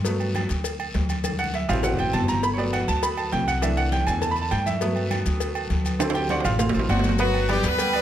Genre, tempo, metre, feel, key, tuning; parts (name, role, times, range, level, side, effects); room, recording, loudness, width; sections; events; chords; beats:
latin, salsa; 202 BPM; 4/4; straight; G major; A4 = 442 Hz
bright concert grand piano; accompaniment; 0.0-8.0 s; D3 to B5; -25 LUFS; right 2 dB
upright bass; bass; 0.0-8.0 s; G1 to G2; -26 LUFS; equal
cowbell; percussion; 0.0-7.9 s; -34 LUFS; left 7 dB
guiro; percussion; 0.0-8.0 s; -39 LUFS; left 4 dB
congas; percussion; 0.1-8.0 s; -31 LUFS; left 2 dB
maracas; percussion; 0.1-8.0 s; -38 LUFS; left 6 dB
agogo bells and timbales; percussion; 0.2-8.0 s; -30 LUFS; right 5 dB
brilliant horn section; melody; 6.9-8.0 s; F#3 to B4; -24 LUFS; left 2 dB
moderate large studio reverb, RT60 1.2 s; -21 LUFS; side -11 dB against mid
0.0-7.2 A section
grand piano solo 0.0-7.2; drum fill 1.2-2.4, 6.0-7.2
0.1 Gmaj7; 1.2 D7; 2.4 Gmaj7; 3.6 C6; 4.8 Gmaj7; 6.0 D7; 7.2 Gmaj7
| 0.05 0.35 0.65 0.94 | 1.24 1.54 1.84 2.14 | 2.44 2.73 3.03 3.33 | 3.63 3.92 4.22 4.52 | 4.82 5.11 5.41 5.71 | 6.00 6.30 6.60 6.90 | 7.19 7.49 7.79